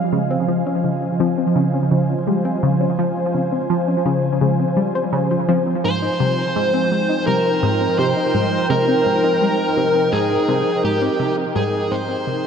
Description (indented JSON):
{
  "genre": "ambient, sequencer-driven space music",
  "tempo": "84 BPM",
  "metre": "4/4",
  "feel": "straight",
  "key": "Ab major",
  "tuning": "A4 = 440 Hz",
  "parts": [
    { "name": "sweeping resonant pad", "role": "sustained chords", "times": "0.0-12.5 s", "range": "F3 to Ab5", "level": "-21 LUFS", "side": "right 1 dB", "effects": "chorus" },
    { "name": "tight sequenced synth", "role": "riff", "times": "0.0-12.5 s", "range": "Ab2 to G3", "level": "-21 LUFS", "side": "equal", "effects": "chorus, analog delay" },
    { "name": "soft round pluck", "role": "arpeggios", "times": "0.1-12.5 s", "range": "F3 to C5", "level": "-25 LUFS", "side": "left 4 dB", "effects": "chorus, auto-pan, analog delay" },
    { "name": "fuzz lead guitar", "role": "melody", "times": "5.8-12.5 s", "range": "G4 to C5", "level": "-20 LUFS", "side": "equal", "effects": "distortion, analog delay" }
  ],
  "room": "wet huge ambient reverb, RT60 8.5 s",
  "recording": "none",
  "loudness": "-16 LUFS",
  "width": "side -7 dB against mid",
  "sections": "0.0-12.5 A section",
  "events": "fade-out 9.7-12.5",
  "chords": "0.0 Dbmaj7; 5.8 Abmaj7"
}